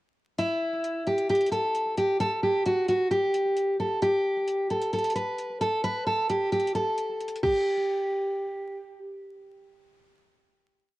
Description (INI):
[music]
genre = hip hop, trap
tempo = 132 BPM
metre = 4/4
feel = half-time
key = unclear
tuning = A4 = 441 Hz
[part]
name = fingerpicked steel-string acoustic guitar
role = melody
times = 0.4-9.0 s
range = E4 to B4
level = -25 LUFS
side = equal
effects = cassette tape
[part]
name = trap drum kit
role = drums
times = 0.4-7.5 s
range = crash cymbal, hi-hat, kick drum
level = -41 LUFS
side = left 1 dB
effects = none
[sound]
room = light reverb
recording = home recording on cassette, vinyl crackle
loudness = -24 LUFS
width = side -17 dB against mid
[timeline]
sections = 0.4-7.7 breakdown; 7.7-11.0 final hit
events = kick muted 6.7-7.7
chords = none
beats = | 0.38 0.84 1.29 1.75 | 2.20 2.66 3.11 3.57 | 4.02 4.47 4.93 5.38 | 5.84 6.29 6.75 7.20 | 7.66 8.11 8.57